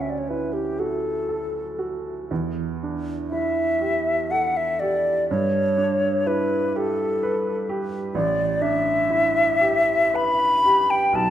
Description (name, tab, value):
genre	classical, impressionist duo for flute and grand piano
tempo	61 BPM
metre	3/4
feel	uneven beats, rubato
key	unclear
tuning	A4 = 440 Hz
part	hollow concert flute	melody	0.0-11.3 s	G4 to B5	-21 LUFS	left 1 dB	none
part	clear baby grand piano	accompaniment	0.0-11.3 s	A1 to B4	-26 LUFS	right 3 dB	none
room	wet scoring stage reverb, RT60 2.0 s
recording	none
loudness	-20 LUFS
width	side -11 dB against mid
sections	0.0-11.3 A section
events	none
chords	0.0 F#m7/D; 2.3 Em7; 5.3 G69; 8.1 A11